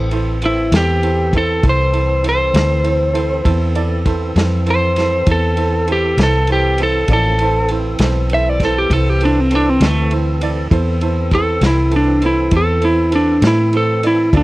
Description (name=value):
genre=slow blues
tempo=66 BPM (dotted quarters)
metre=12/8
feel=straight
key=A minor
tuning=A4 = 442 Hz
part: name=clear upright piano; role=accompaniment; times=0.0-14.4 s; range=E4 to D5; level=-23 LUFS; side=right 5 dB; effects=none
part: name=tonewheel organ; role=sustained chords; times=0.0-14.4 s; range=E3 to A4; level=-26 LUFS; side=left 1 dB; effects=slow rotary speaker, overdrive
part: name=vintage muted fingered electric bass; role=bass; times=0.0-14.4 s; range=A1 to A2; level=-17 LUFS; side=equal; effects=none
part: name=vintage drum kit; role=drums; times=0.1-14.4 s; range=kick drum, ride cymbal, snare drum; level=-22 LUFS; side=equal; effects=none
part: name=lightly driven lead guitar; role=melody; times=0.5-14.4 s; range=A3 to E5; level=-16 LUFS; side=equal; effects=none
room=small room ambience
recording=dry, close 1970s-style studio recording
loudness=-13 LUFS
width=side -19 dB against mid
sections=0.0-14.4 A section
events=lead electric guitar solo 0.0-14.4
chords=0.0 Am